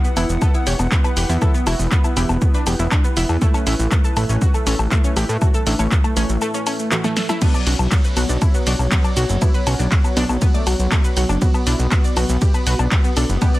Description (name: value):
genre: melodic techno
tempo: 120 BPM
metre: 4/4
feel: straight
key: B minor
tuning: A4 = 442 Hz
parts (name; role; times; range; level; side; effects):
- dark analog pad; sustained chords; 0.0-13.6 s; A3 to F#5; -30 LUFS; left 1 dB; chorus, sidechain pumping
- analog pluck; arpeggios; 0.0-13.6 s; A3 to D6; -27 LUFS; equal; chorus, sidechain pumping, digital delay
- filtered dub chord stab; stabs; 0.0-13.6 s; A2 to E4; -29 LUFS; right 1 dB; chorus, sidechain pumping, digital delay
- punchy analog drum machine; drums; 0.0-13.6 s; crash cymbal, handclaps, hi-hat, ride cymbal, shaker, snare drum, woodblock; -24 LUFS; left 1 dB; none
- wide unison lead; melody; 0.2-13.6 s; F#3 to C#5; -27 LUFS; equal; vintage 12-bit sampler grit, sidechain pumping, dub echo
- fat analog bass; bass; 0.2-13.4 s; E1 to A2; -19 LUFS; equal; sidechain pumping
- electronic kick drum; drums; 0.4-13.5 s; none; -17 LUFS; equal; none
room: digital ambience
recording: dense, heavily limited modern master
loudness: -15 LUFS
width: side -17 dB against mid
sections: 0.0-13.6 A section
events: break 6.4-7.4; drum fill 7.0-7.4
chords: 0.0 Em; 3.4 A; 7.4 Bm